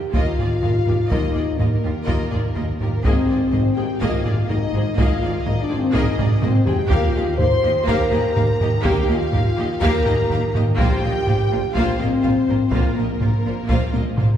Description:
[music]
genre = cinematic, epic orchestral film score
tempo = 124 BPM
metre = 4/4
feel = straight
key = Eb major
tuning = A4 = 440 Hz
[part]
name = warm symphonic violin section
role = melody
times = 0.0-14.4 s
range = Bb4 to C6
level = -32 LUFS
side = left 5 dB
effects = none
[part]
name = dark French horn section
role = sustained chords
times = 0.0-14.4 s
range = Bb3 to C5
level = -22 LUFS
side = left 1 dB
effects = none
[part]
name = bright symphonic viola section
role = accompaniment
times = 0.1-14.3 s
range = Bb3 to Ab4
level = -28 LUFS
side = equal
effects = none
[part]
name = clear symphonic cello section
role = bass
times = 0.1-14.3 s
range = Eb2 to Bb2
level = -29 LUFS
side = right 2 dB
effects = none
[part]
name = rich symphonic double bass section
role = bass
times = 0.1-14.3 s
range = Ab1 to Eb2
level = -28 LUFS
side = right 2 dB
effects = none
[part]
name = taiko ensemble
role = drums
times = 0.1-14.4 s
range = none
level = -21 LUFS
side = equal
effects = none
[part]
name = clear symphonic violin section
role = second line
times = 0.2-14.3 s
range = G4 to F5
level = -30 LUFS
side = left 3 dB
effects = none
[part]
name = warm tuba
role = bass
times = 0.2-14.3 s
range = Ab1 to Eb2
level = -30 LUFS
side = right 1 dB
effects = none
[part]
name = timpani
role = percussion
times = 6.9-7.6, 10.8-11.5 s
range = Bb2 to Eb3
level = -34 LUFS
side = equal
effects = none
[sound]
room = wet concert hall reverb, RT60 2.4 s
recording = heard from further back in the room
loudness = -17 LUFS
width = side -10 dB against mid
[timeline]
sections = 0.0-14.4 A section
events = drum fill 6.2-6.9, 13.9-14.4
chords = 0.0 Ebsus2; 3.0 Abadd9; 6.9 Ebadd9; 10.8 Bbsus2

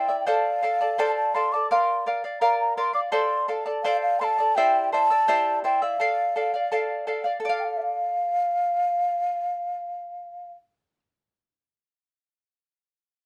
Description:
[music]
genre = andean folk, Andean ensemble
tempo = 84 BPM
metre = 2/4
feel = straight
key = D minor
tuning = A4 = 440 Hz
[part]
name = mellow hollow wooden flute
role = melody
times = 0.0-10.5 s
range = E5 to D6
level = -26 LUFS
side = equal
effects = none
[part]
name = charango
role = accompaniment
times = 0.0-11.0 s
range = E4 to A5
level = -27 LUFS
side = equal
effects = none
[sound]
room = light reverb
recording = none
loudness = -24 LUFS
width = mono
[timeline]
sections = 0.0-7.4 A section; 7.4-10.3 B section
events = none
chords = 0.3 F; 1.7 Bb; 3.1 F; 4.6 C; 6.0 Dm

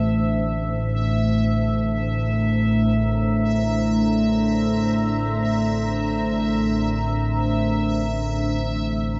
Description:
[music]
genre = dark ambient drone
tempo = free time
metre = none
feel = none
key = unclear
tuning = A4 = 439 Hz
[part]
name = deep dark ambient pad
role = sustained chords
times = 0.0-9.2 s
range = A3 to Bb5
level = -29 LUFS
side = equal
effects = chorus, built-in reverb
[part]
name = quartz singing bowl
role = arpeggios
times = 0.0-5.9 s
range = A3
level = -29 LUFS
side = equal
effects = delay
[part]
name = analog drone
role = drone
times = 0.0-9.2 s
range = A1 to A2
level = -25 LUFS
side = equal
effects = chorus
[part]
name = bubbling stepped-filter texture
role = texture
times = 0.0-9.2 s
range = E5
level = -32 LUFS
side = equal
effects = chorus, built-in reverb
[sound]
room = wet cathedral reverb, RT60 6.2 s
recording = nothing above 7.9 kHz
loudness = -22 LUFS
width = mono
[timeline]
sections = 0.0-9.2 A section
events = filter sweep on synth drone 0.0-9.2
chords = 0.0 Bbsus2/A

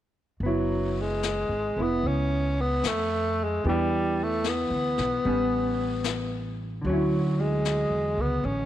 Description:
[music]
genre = jazz ballad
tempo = 75 BPM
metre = 4/4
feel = swing 68% on 8ths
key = F# minor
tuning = A4 = 443 Hz
[part]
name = hollow-body jazz guitar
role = accompaniment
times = 0.4-8.7 s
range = D3 to G4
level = -29 LUFS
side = right 1 dB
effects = none
[part]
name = upright bass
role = bass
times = 0.4-8.7 s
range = E#1 to E#2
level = -30 LUFS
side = equal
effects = none
[part]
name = jazz brush drum kit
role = drums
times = 0.4-8.7 s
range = brushed snare drum, hi-hat, snare drum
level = -36 LUFS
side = left 10 dB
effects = none
[part]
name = growling tenor saxophone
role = melody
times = 0.5-8.7 s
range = F#3 to C#4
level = -27 LUFS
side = equal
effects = none
[sound]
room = moderate echo chamber reverb, RT60 1.9 s, small room ambience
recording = 1960s-style stereo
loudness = -24 LUFS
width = side -12 dB against mid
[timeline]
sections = 0.4-8.7 A section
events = none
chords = 0.4 F#9sus4; 3.6 Em7; 5.2 A9; 6.8 Dmaj9

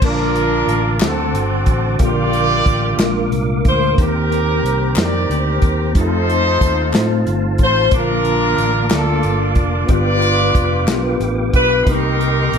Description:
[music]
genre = slow gospel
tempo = 61 BPM (dotted quarters)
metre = 6/8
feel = straight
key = Bb major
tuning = A4 = 440 Hz
[part]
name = warm horn section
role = melody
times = 0.0-12.6 s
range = C4 to D5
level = -18 LUFS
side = equal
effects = slapback echo
[part]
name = mellow tine electric piano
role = accompaniment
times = 0.0-12.6 s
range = G2 to A5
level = -21 LUFS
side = left 2 dB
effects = medium stereo tremolo
[part]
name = mellow tonewheel organ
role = sustained chords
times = 0.0-12.6 s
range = Bb3 to D6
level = -26 LUFS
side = right 3 dB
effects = slow rotary speaker, chorus vibrato
[part]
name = fingered electric bass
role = bass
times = 0.0-12.6 s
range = F1 to A2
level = -20 LUFS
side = equal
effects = none
[part]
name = warm soul drum kit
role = drums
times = 0.0-12.6 s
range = crash cymbal, hi-hat, kick drum, snare drum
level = -18 LUFS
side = equal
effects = none
[part]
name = group handclap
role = percussion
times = 1.0-11.2 s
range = none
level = -28 LUFS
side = left 5 dB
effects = none
[sound]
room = moderate large studio reverb, RT60 1.2 s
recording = none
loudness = -14 LUFS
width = side -7 dB against mid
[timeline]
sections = 0.0-12.6 A section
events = none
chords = 0.0 Bbmaj7; 1.0 D7; 2.0 Gm7/Bb; 3.0 Bb7; 4.0 Eb6; 6.0 F7; 7.9 Bbmaj7; 9.9 G7; 11.9 Cm7

